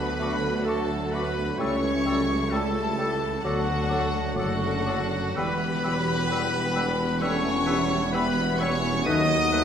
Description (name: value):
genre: classical, slow romantic movement for symphony orchestra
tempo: 65 BPM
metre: 4/4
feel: rubato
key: D major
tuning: A4 = 441 Hz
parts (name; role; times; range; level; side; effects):
- rich studio violin section; melody; 0.0-9.6 s; F#5 to D#6; -32 LUFS; left 4 dB; none
- warm oboe; second line; 0.0-9.6 s; F#4 to D#5; -34 LUFS; equal; none
- warm studio violin section; second line; 0.0-9.6 s; B3 to A4; -36 LUFS; left 4 dB; none
- warm studio viola section; accompaniment; 0.0-9.6 s; D3 to B3; -34 LUFS; right 3 dB; none
- dark French horn section; sustained chords; 0.0-9.6 s; F#3 to D#4; -31 LUFS; left 4 dB; none
- dark trombone section; sustained chords; 0.0-9.6 s; F#3 to B3; -37 LUFS; right 4 dB; none
- concert harp; arpeggios; 0.0-9.6 s; C#3 to B5; -36 LUFS; left 7 dB; none
- bright trumpet section; stabs; 0.0-9.6 s; F#4 to D#5; -32 LUFS; right 2 dB; none
- dark studio double bass section; bass; 0.0-9.6 s; E1 to D#2; -34 LUFS; right 2 dB; none
- mellow tuba; bass; 0.0-9.6 s; E1 to D#2; -34 LUFS; right 4 dB; none
- rich studio cello section; bass; 0.0-9.6 s; C#2 to F#2; -33 LUFS; right 2 dB; none
- bright clarinet; second line; 0.2-9.6 s; F#4 to B4; -37 LUFS; left 1 dB; none
- silver concert flute; second line; 0.2-9.6 s; D6 to F#6; -39 LUFS; left 2 dB; none
- clear bassoon; accompaniment; 0.2-9.6 s; F#3 to A3; -37 LUFS; right 2 dB; none
room: wet concert hall reverb, RT60 1.8 s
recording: none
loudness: -23 LUFS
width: side -8 dB against mid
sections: 0.0-9.6 A section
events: none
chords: 0.0 D; 1.6 A7/C#; 3.4 D; 5.4 Em7; 9.1 B7/D#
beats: 0.66 | 1.59 2.52 3.45 4.37 | 5.37 6.31 7.22 8.13 | 9.05